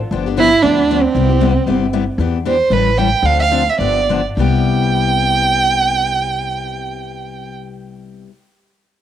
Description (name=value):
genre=acoustic string swing (jazz manouche)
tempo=199-234 BPM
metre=4/4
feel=swing 55% on 8ths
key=C major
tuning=A4 = 440 Hz
part: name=picked steel-string acoustic guitar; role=accompaniment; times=0.1-8.3 s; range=C3 to A4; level=-21 LUFS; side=left 9 dB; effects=cassette tape
part: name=upright bass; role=bass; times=0.1-8.2 s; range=G1 to E2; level=-20 LUFS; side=left 1 dB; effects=none
part: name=warm violin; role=melody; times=0.4-7.5 s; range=C4 to G5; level=-15 LUFS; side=right 4 dB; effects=cassette tape
room=moderate spring reverb, RT60 1.9 s, small room ambience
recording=home recording on cassette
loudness=-12 LUFS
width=side -10 dB against mid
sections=0.0-2.2 A section; 2.2-4.4 B section; 4.4-6.8 C section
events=slowing down 2.2-4.4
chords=0.1 G7; 1.2 Cmaj7; 2.2 Em7; 2.7 A9; 3.2 Dm7; 3.8 G7; 4.4 Cmaj7